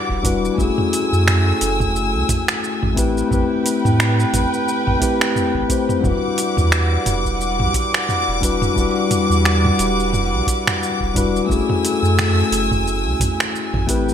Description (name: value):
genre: sunset chillout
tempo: 88 BPM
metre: 4/4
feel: swing 57% on 16ths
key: unclear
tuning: A4 = 436 Hz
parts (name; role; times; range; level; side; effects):
- mellow tine electric piano; accompaniment; 0.0-14.1 s; G3 to C5; -21 LUFS; moving between left 5 dB and right 3 dB; auto-pan, ping-pong delay, shimmer reverb
- dark studio string section; sustained chords; 0.0-14.1 s; G3 to E6; -22 LUFS; left 2 dB; shimmer reverb
- downlifter; sound effects; 0.0-0.6 s; none; barely audible; none; none
- warm sub bass; bass; 0.1-14.1 s; E1 to A2; -20 LUFS; right 1 dB; none
- electronic kick drum; drums; 0.1-14.0 s; none; -24 LUFS; right 1 dB; overdrive, studio reverb
- deep house drum kit; drums; 0.2-14.1 s; finger snaps, hi-hat, shaker, toms; -22 LUFS; right 2 dB; studio reverb, gated reverb
room: moderate plate reverb, RT60 1.6 s, digital ambience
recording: bright 1980s-style digital production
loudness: -16 LUFS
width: side -9 dB against mid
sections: 0.0-14.1 A section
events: none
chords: 0.0 Em9; 0.6 F#m9; 3.0 Am9; 6.0 Em9; 11.5 F#m9